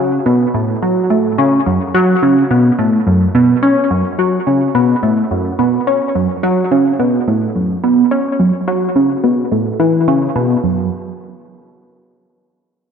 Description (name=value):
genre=ambient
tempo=107 BPM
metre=4/4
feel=straight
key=F# minor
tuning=A4 = 439 Hz
part: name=tight sequenced synth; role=solo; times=0.0-10.9 s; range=F#2 to C#4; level=-12 LUFS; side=equal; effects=chorus, phaser, tape echo
room=wet spring reverb, RT60 2.5 s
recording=echo-heavy mix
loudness=-12 LUFS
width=side -7 dB against mid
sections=0.0-10.6 A section; 10.6-12.9 B section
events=none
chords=none